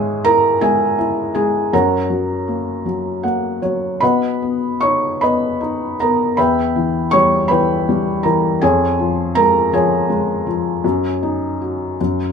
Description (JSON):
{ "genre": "classical, lyrical solo piano", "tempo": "53 BPM (dotted quarters)", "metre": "6/8", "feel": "uneven beats, rubato", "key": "unclear", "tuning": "A4 = 440 Hz", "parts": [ { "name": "felt-muted upright piano", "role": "solo", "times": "0.0-12.3 s", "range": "E2 to C#6", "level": "-15 LUFS", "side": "equal", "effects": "none" } ], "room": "light reverb", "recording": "close, detailed microphones", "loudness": "-15 LUFS", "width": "side -6 dB against mid", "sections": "0.0-12.3 A section", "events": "felt piano fill 2.9-4.0", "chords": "0.0 C#m/G#; 1.7 F#; 4.0 B; 6.4 Em; 8.6 C#6/E#; 10.8 G#7sus4/F#", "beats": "0.62 | 1.72 2.85 | 4.02 5.21 | 6.37 7.50 | 8.62 9.72 | 10.84 11.99" }